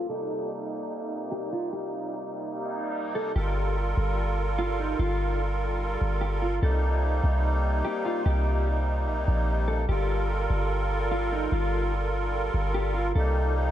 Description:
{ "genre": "hip hop, atmospheric cloud-rap", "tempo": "147 BPM", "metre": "4/4", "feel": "half-time", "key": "G minor", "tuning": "A4 = 440 Hz", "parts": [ { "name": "mellow electric guitar", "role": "melody", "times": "0.0-13.5 s", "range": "Eb4 to A4", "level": "-33 LUFS", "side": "equal", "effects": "wide subtle chorus, diffuse ambient delay" }, { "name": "musette accordion", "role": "sustained chords", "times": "0.0-13.7 s", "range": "C3 to Bb4", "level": "-30 LUFS", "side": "right 1 dB", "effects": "none" }, { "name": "warm 808-style bass", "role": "bass", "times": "3.4-13.7 s", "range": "G1 to C2", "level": "-26 LUFS", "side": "equal", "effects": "none" } ], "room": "moderate plate reverb, RT60 3.5 s", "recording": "dreamy mix soaked in reverb, low-pass filter", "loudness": "-25 LUFS", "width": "side -11 dB against mid", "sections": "0.0-3.4 A section; 3.4-13.7 B section", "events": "filter sweep 0.0-3.4", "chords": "0.1 Cm7; 3.4 Gm9; 6.6 Cm7; 9.9 Gm9; 13.2 Cm7" }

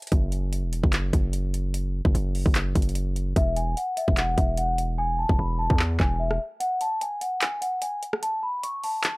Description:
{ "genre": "hip hop, trap", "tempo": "148 BPM", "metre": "4/4", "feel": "half-time", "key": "F# minor", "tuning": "A4 = 440 Hz", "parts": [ { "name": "trap drum kit", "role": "drums", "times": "0.0-9.1 s", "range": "handclaps, hi-hat, kick drum, rim click", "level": "-24 LUFS", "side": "equal", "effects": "none" }, { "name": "distorted 808-style bass", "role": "bass", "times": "0.1-6.4 s", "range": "E1 to E2", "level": "-26 LUFS", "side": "equal", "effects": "distortion" }, { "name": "large celesta", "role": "melody", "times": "3.4-9.2 s", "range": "E5 to C#6", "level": "-27 LUFS", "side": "left 1 dB", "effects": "low-pass filter" } ], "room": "little or no reverb", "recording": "dry, gritty hardware recording", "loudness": "-23 LUFS", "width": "side -26 dB against mid", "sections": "0.0-9.2 A section", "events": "hi-hats muted 5.0-6.6; break 6.6-9.2", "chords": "none" }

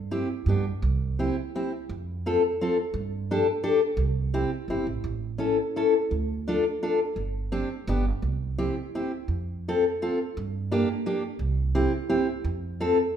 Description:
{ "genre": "alpine folk, alpine dance band", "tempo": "171 BPM", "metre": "3/4", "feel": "rubato", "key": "C major, F major from 9.3 s", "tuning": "A4 = 442 Hz", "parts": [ { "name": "upright bass", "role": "bass", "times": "0.0-12.9 s", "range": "G1 to G2", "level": "-28 LUFS", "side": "right 3 dB", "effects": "none" }, { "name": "fingerpicked steel-string acoustic guitar", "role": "accompaniment", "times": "0.1-13.0 s", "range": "Bb3 to A4", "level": "-25 LUFS", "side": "left 2 dB", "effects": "none" } ], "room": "wet recital hall reverb, RT60 1.3 s", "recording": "minimal, uncompressed stereo recording", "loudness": "-24 LUFS", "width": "side -9 dB against mid", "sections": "0.0-9.3 A section; 9.3-13.2 B section", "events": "none", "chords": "0.5 G; 0.8 C; 1.9 F; 2.9 Gsus2; 4.0 C; 5.0 A; 6.1 Dm; 7.2 Gsus4; 7.9 G; 8.2 C; 9.3 F; 10.4 Gm; 11.4 C; 12.5 F" }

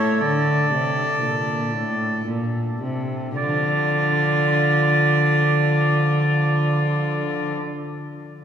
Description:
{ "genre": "classical, baroque-style sonata movement with continuo", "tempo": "53-61 BPM", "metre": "3/4", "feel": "straight", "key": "D minor", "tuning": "A4 = 440 Hz", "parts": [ { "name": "rich violin", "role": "melody", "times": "0.0-7.5 s", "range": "F4 to A4", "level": "-30 LUFS", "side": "left 6 dB", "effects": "none" }, { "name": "warm oboe", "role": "second line", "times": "0.0-7.5 s", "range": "C#5 to D5", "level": "-22 LUFS", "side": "right 2 dB", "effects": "none" }, { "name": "pipe organ, flutes", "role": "accompaniment", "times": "0.0-7.7 s", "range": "A2 to D5", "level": "-26 LUFS", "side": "left 1 dB", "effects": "none" }, { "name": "dark cello", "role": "bass", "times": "0.0-7.5 s", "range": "A2 to A3", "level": "-23 LUFS", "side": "equal", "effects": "none" } ], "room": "wet church reverb, RT60 3.4 s", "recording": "recorded in a church or concert hall", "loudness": "-18 LUFS", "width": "side -8 dB against mid", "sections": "0.0-3.4 A section; 3.4-6.8 B section", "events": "slowing down 0.0-3.4", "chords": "0.2 D5; 3.4 Dm" }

